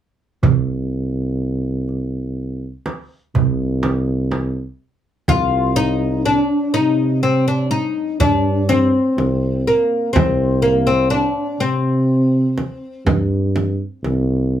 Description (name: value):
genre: Turkish makam ensemble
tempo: 123 BPM (eighths)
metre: 10/8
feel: straight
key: C makam huseyni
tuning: A4 = 440 Hz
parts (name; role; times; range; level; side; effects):
- mellow tuba; bass; 0.4-14.6 s; C2 to C3; -19 LUFS; right 1 dB; none
- darbuka; percussion; 0.4-4.5 s; none; -18 LUFS; right 7 dB; none
- frame drum; percussion; 0.4-14.3 s; none; -20 LUFS; right 2 dB; none
- oud; melody; 5.3-13.0 s; Bb3 to F4; -18 LUFS; left 2 dB; none
room: light reverb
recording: band playing live in one room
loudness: -16 LUFS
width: side -10 dB against mid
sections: 0.4-5.3 A section; 5.3-14.6 B section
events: none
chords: none